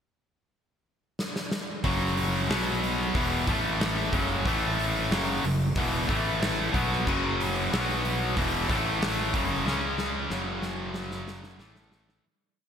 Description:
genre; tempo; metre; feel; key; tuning
hard rock; 92 BPM; 4/4; straight; F# minor; A4 = 437 Hz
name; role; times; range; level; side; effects
huge arena drum kit; drums; 1.2-12.2 s; crash cymbal, hi-hat, kick drum, snare drum; -31 LUFS; equal; none
distorted electric guitar; riff; 1.8-12.2 s; E2 to C#4; -30 LUFS; left 8 dB; overdrive
scooped high-gain guitar; riff; 1.8-12.2 s; E2 to C#4; -29 LUFS; right 7 dB; distortion
fuzz fingered electric bass; bass; 1.8-12.2 s; E1 to C#2; -33 LUFS; equal; overdrive
room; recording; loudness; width
moderate lush hall reverb, RT60 2.8 s; bright 1980s-style digital production; -25 LUFS; side -8 dB against mid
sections
0.0-1.8 pickup bar; 1.8-12.2 riff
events
drum fill 1.2-1.8, 9.7-12.2; fade-out 9.7-12.2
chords
0.0 N.C.; 1.8 F#5; 2.5 B5; 3.1 E5; 3.5 A5; 4.1 F#5; 4.5 A5; 5.1 F#5; 6.1 A5; 6.7 F#5; 7.7 B5; 8.4 E5; 8.7 A5; 9.3 F#5; 9.7 C#5; 10.3 F#5; 11.6 A5

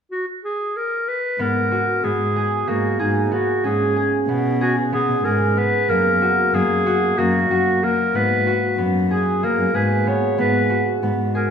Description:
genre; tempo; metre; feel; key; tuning
contemporary instrumental, contemporary; 187 BPM (eighths); 7/8; straight; G# minor; A4 = 440 Hz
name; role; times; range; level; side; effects
mellow clarinet; melody; 0.1-11.5 s; D#4 to C#5; -21 LUFS; left 1 dB; none
concert harp; arpeggios; 1.4-11.5 s; A#3 to G#4; -21 LUFS; right 1 dB; none
dark cello; bass; 1.4-11.5 s; F#2 to B2; -23 LUFS; equal; none
room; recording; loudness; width
moderate scoring stage reverb, RT60 1.7 s; minimal, uncompressed stereo recording; -17 LUFS; side -7 dB against mid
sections
0.0-1.4 A section; 1.4-11.5 B section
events
none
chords
0.0 N.C.; 1.4 G#m9; 3.6 C#5/G#; 5.9 F#; 8.1 G#m9; 10.4 G#m7

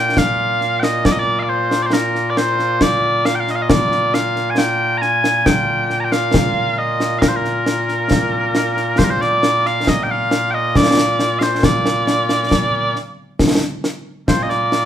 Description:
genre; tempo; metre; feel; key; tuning
scottish traditional, Scottish pipe music; 68 BPM; 3/4; straight; Bb major; A4 = 440 Hz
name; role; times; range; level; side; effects
mellow small bagpipes; melody; 0.0-14.9 s; Bb2 to Bb5; -16 LUFS; equal; none
concert snare drum and concert bass drum; drums; 0.2-14.9 s; none; -18 LUFS; equal; none
room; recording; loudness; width
wet studio reverb, RT60 0.8 s; band playing live in one room; -14 LUFS; side -10 dB against mid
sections
0.0-9.0 A section; 9.0-14.9 B section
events
none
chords
none

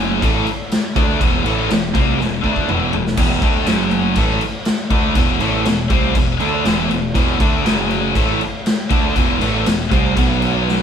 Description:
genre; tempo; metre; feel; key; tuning
hard rock; 121 BPM; 4/4; straight; E minor; A4 = 439 Hz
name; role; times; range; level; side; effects
overdriven semi-hollow guitar; riff; 0.0-10.8 s; E2 to D4; -21 LUFS; right 7 dB; none
scooped high-gain guitar; riff; 0.0-10.8 s; E2 to D4; -20 LUFS; left 8 dB; distortion
growling picked electric bass; bass; 0.0-10.8 s; E1 to D2; -24 LUFS; equal; overdrive
raw garage drum kit; drums; 0.2-10.8 s; crash cymbal, kick drum, snare drum, toms; -18 LUFS; equal; none
room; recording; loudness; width
moderate stone room reverb, RT60 1.2 s; band playing live in one room; -14 LUFS; side -8 dB against mid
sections
0.0-10.8 A section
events
drum fill 2.2-3.2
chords
0.2 Em; 3.7 F#5; 4.2 Em; 7.7 F#5; 8.2 Em; 10.2 B5

